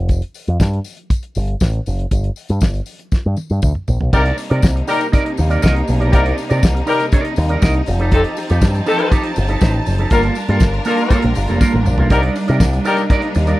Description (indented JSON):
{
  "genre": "disco",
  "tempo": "120 BPM",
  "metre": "4/4",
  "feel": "straight",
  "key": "C dorian",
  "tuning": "A4 = 440 Hz",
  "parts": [
    { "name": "picked electric bass with an envelope filter", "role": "bass", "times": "0.0-13.5 s", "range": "F1 to C3", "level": "-16 LUFS", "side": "equal", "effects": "none" },
    { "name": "damped 70s drum kit", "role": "drums", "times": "0.1-13.6 s", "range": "crash cymbal, hi-hat, kick drum, snare drum, toms", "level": "-15 LUFS", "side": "equal", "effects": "none" },
    { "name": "tambourine", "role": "percussion", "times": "0.1-13.6 s", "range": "none", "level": "-37 LUFS", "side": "left 12 dB", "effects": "none" },
    { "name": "electric guitar with an envelope filter", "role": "accompaniment", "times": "4.1-13.6 s", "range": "Bb3 to Eb5", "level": "-21 LUFS", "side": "right 3 dB", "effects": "none" },
    { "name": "bright studio string section", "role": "sustained chords", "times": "4.1-13.6 s", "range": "C3 to A5", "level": "-23 LUFS", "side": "equal", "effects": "none" },
    { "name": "mellow horn section", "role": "stabs", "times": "4.1-13.0 s", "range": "C4 to Bb4", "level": "-17 LUFS", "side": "left 3 dB", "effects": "none" }
  ],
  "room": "small room ambience",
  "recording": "dry, close 1970s-style studio recording",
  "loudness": "-14 LUFS",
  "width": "side -17 dB against mid",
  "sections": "0.0-4.1 A section; 4.1-13.6 B section",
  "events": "drum fill 3.1-4.1, 11.6-12.1",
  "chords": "0.0 Fadd9; 2.1 N.C.; 4.1 Cm9; 7.9 F9; 10.1 Gm9; 12.1 Cm9"
}